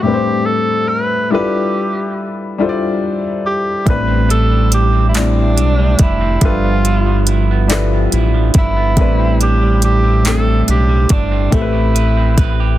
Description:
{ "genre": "slow six-eight R&B", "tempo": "47 BPM (dotted quarters)", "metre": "6/8", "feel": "straight", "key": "A minor", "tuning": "A4 = 441 Hz", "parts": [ { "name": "warm tenor saxophone", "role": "melody", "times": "0.0-12.8 s", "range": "D4 to B4", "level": "-19 LUFS", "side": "right 1 dB", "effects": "none" }, { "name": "warm baby grand piano", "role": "accompaniment", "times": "0.0-12.8 s", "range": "A2 to E5", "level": "-18 LUFS", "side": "left 4 dB", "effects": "none" }, { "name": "electric guitar at the edge of break-up", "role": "second line", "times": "3.9-12.8 s", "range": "G2 to B4", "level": "-21 LUFS", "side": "right 10 dB", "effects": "none" }, { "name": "round analog bass", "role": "bass", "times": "3.9-12.8 s", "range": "F1 to B1", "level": "-14 LUFS", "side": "equal", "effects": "none" }, { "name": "smooth R&B drum kit", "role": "drums", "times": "3.9-12.6 s", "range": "handclaps, hi-hat, kick drum", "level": "-15 LUFS", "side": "equal", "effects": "none" } ], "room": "little or no reverb", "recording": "dense, heavily limited modern master", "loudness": "-12 LUFS", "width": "side -14 dB against mid", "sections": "0.0-12.8 A section", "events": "none", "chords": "0.0 Am11; 1.3 G13; 3.9 Am11; 6.4 G13; 9.0 Am11; 11.5 Am9", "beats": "0.03 | 1.31 2.59 | 3.86 5.14 | 6.42 7.69 | 8.97 10.25 | 11.52" }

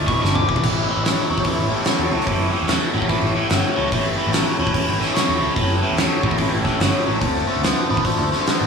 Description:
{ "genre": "blues rock power trio and southern rock", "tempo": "146 BPM", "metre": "4/4", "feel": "swing 64% on 8ths", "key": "A mixolydian", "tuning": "A4 = 440 Hz", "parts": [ { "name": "overdriven tonewheel organ", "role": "sustained chords", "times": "0.0-8.7 s", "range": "G#3 to D5", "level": "-28 LUFS", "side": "right 1 dB", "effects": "slow rotary speaker, chorus vibrato" }, { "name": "biting overdriven guitar", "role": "riff", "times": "0.0-8.7 s", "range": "E2 to B3", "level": "-21 LUFS", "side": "left 1 dB", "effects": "phaser, slapback echo" }, { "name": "vintage muted picked electric bass", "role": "bass", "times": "0.0-8.7 s", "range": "E1 to F#2", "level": "-24 LUFS", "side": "equal", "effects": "none" }, { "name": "lead guitar through a small cranked amp", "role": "melody", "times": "0.1-0.6 s", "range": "C#6 to D6", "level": "-26 LUFS", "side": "left 2 dB", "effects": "overdrive, slapback echo" }, { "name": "oversized low-tuned drum kit", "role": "drums", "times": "0.1-8.6 s", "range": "crash cymbal, hi-hat, kick drum, snare drum, toms", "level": "-22 LUFS", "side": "equal", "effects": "none" } ], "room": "wet lush hall reverb, RT60 1.9 s, small room reverb", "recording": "big arena sound", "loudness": "-17 LUFS", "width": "side -6 dB against mid", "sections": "0.6-8.7 A section", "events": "drum fill 0.2-0.6", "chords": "0.0 E7; 0.6 A7; 7.2 D7", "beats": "0.22 | 0.63 1.04 1.45 1.86 | 2.27 2.68 3.09 3.50 | 3.91 4.33 4.74 5.15 | 5.56 5.97 6.38 6.80 | 7.21 7.62 8.04 8.45" }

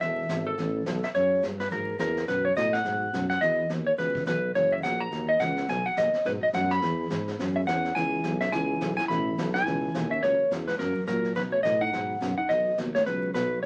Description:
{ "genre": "country, western swing", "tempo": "211 BPM", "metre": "4/4", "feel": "swing 59% on 8ths", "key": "unclear", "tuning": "A4 = 440 Hz", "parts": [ { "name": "clean lap steel guitar", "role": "melody", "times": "0.0-13.7 s", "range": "A4 to B5", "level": "-28 LUFS", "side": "equal", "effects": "none" }, { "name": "picked steel-string acoustic guitar", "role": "accompaniment", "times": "0.0-13.7 s", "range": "B2 to B4", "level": "-38 LUFS", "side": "equal", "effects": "none" }, { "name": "breathy tuba", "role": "bass", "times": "0.0-13.7 s", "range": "E1 to B2", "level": "-34 LUFS", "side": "equal", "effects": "none" }, { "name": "vintage brush drum kit", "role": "drums", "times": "0.0-13.7 s", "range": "brushed snare drum, hi-hat, kick drum, snare drum", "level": "-41 LUFS", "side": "equal", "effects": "none" }, { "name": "hollow-body jazz guitar", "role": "second line", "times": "7.6-13.6 s", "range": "F#3 to E4", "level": "-38 LUFS", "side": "equal", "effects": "none" } ], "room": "moderate studio ambience, RT60 0.5 s", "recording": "vinyl crackle", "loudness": "-27 LUFS", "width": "mono", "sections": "0.0-13.7 A section", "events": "none", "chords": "0.0 Asus2/E; 1.1 F#add9; 2.3 B7; 3.4 Esus2; 4.5 F#7; 5.7 B7; 6.8 E6; 8.0 C#m7; 9.1 Aadd9; 10.2 F#; 11.4 Badd9; 12.5 B", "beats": "| 0.00 0.28 0.57 0.85 | 1.14 1.42 1.71 1.99 | 2.27 2.56 2.84 3.13 | 3.41 3.70 3.98 4.27 | 4.55 4.83 5.12 5.40 | 5.69 5.97 6.25 6.54 | 6.82 7.11 7.39 7.67 | 7.96 8.24 8.53 8.81 | 9.09 9.38 9.66 9.94 | 10.23 10.51 10.79 11.08 | 11.36 11.64 11.93 12.21 | 12.49 12.78 13.06 13.35 | 13.63" }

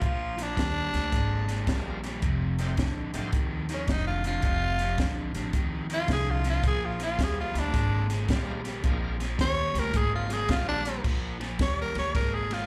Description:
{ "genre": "electric blues shuffle", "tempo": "109 BPM", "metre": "4/4", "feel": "swing 66% on 8ths", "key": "Bb mixolydian", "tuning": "A4 = 440 Hz", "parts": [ { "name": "biting overdriven guitar", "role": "riff", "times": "0.0-12.7 s", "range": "F2 to Ab3", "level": "-37 LUFS", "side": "equal", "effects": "slapback echo" }, { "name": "upright bass", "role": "bass", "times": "0.0-12.7 s", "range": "F1 to Eb2", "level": "-33 LUFS", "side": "equal", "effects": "none" }, { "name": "compact cocktail drum kit", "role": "drums", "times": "0.0-12.6 s", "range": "crash cymbal, hi-hat, kick drum, ride cymbal, snare drum", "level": "-32 LUFS", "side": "equal", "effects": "none" }, { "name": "growling tenor saxophone", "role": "melody", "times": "0.1-12.7 s", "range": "Db4 to Db5", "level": "-33 LUFS", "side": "equal", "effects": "slapback echo, tape echo" }, { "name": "bright tonewheel organ", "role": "accompaniment", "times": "1.7-4.8, 8.3-10.8 s", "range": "G3 to F4", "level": "-42 LUFS", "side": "equal", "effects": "slow rotary speaker, overdrive, slapback echo" } ], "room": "little or no reverb", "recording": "live gig heard through the venue's PA, club reverb", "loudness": "-28 LUFS", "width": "mono", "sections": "0.0-11.0 A section; 11.0-12.7 A section", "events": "tenor saxophone solo 0.0-12.7", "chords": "0.0 Bb7; 2.2 F7; 6.6 Bb7; 11.0 Bb7(no3)", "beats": "| 0.02 0.57 1.12 1.67 | 2.22 2.78 3.33 3.88 | 4.43 4.98 5.53 6.08 | 6.63 7.19 7.74 8.29 | 8.84 9.39 9.94 10.49 | 11.04 11.59 12.14" }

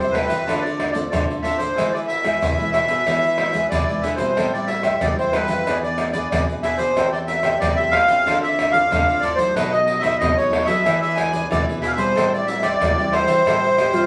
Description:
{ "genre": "samba and choro", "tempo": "92 BPM", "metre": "4/4", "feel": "straight", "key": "A minor", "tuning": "A4 = 441 Hz", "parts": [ { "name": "accordion", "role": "melody", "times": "0.0-14.1 s", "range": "B4 to G#5", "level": "-22 LUFS", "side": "equal", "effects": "light tremolo tuning" }, { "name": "cavaquinho", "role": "accompaniment", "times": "0.0-14.1 s", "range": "D#4 to G5", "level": "-30 LUFS", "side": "equal", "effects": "none" }, { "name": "nylon-string guitar", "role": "accompaniment", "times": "0.0-14.1 s", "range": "F#2 to A4", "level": "-33 LUFS", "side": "equal", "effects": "none" }, { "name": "nylon-string guitar", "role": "bass", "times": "0.0-14.0 s", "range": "E2 to F#3", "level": "-32 LUFS", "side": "equal", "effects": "none" }, { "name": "maracas, pandeiro, surdo and tamborim", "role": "percussion", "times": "0.0-14.1 s", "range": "none", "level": "-26 LUFS", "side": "equal", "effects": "none" }, { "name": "baroque flute", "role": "second line", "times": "13.8-14.1 s", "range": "F4 to G4", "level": "-23 LUFS", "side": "equal", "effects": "none" } ], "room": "wet studio reverb, RT60 0.6 s", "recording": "vinyl crackle", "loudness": "-20 LUFS", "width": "mono", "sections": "0.0-14.1 A section", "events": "none", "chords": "0.5 Dm7; 1.8 E; 4.4 Am7; 5.7 E7; 7.0 Am7/E; 8.3 Dm7; 9.6 B7; 10.9 E7; 12.2 Am7", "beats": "0.47 1.12 | 1.77 2.42 3.07 3.72 | 4.37 5.02 5.67 6.32 | 6.97 7.62 8.27 8.92 | 9.57 10.22 10.87 11.52 | 12.16 12.81 13.46" }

